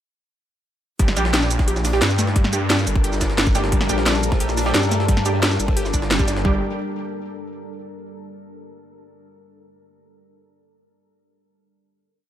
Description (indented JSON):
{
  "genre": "dark technical drum and bass",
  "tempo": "176 BPM",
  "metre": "4/4",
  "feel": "straight",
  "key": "G minor",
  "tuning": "A4 = 440 Hz",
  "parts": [
    { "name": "deep dark ambient pad", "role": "sustained chords", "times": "2.3-6.6 s", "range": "G3 to Bb4", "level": "-28 LUFS", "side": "left 2 dB", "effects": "chorus, built-in reverb, sidechain pumping" },
    { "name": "wide unison pluck", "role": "arpeggios", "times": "1.0-6.6 s", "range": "G3 to G4", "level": "-28 LUFS", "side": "left 2 dB", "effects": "sidechain pumping, digital delay" },
    { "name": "wide detuned saw bass", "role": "bass", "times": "1.0-3.9, 5.9-6.6 s", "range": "G1 to G2", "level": "-22 LUFS", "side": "equal", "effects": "chorus, overdrive, sidechain pumping" },
    { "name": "drum and bass drum kit", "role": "drums", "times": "1.0-6.3 s", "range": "hi-hat, shaker, snare drum", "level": "-22 LUFS", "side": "equal", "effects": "studio reverb" },
    { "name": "electronic kick drum", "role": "drums", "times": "1.0-6.5 s", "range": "none", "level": "-19 LUFS", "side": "equal", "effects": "studio reverb" },
    { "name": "jungle sampler-style drum kit", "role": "drums", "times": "1.0-6.4 s", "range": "hi-hat, snare drum", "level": "-30 LUFS", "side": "equal", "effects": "none" },
    { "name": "orchestra-hit-like synth stab", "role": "stabs", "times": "1.2-6.6 s", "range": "G3 to G4", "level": "-26 LUFS", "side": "right 3 dB", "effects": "built-in reverb, phaser, cassette tape, digital delay" },
    { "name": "formant-sweep wobble bass", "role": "bass", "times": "3.9-5.9 s", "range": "G1 to G2", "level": "-22 LUFS", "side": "equal", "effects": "chorus" }
  ],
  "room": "light reverb",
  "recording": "none",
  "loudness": "-17 LUFS",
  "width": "side -11 dB against mid",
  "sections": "1.0-6.4 drop; 6.4-7.8 final chord",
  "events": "drop 1.0-6.4",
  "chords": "1.0 Gmadd9",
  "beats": "| 0.99 1.34 1.68 2.02 | 2.36 2.70 3.04 3.38 | 3.72 4.06 4.40 4.75 | 5.09 5.43 5.77 6.11 | 6.45"
}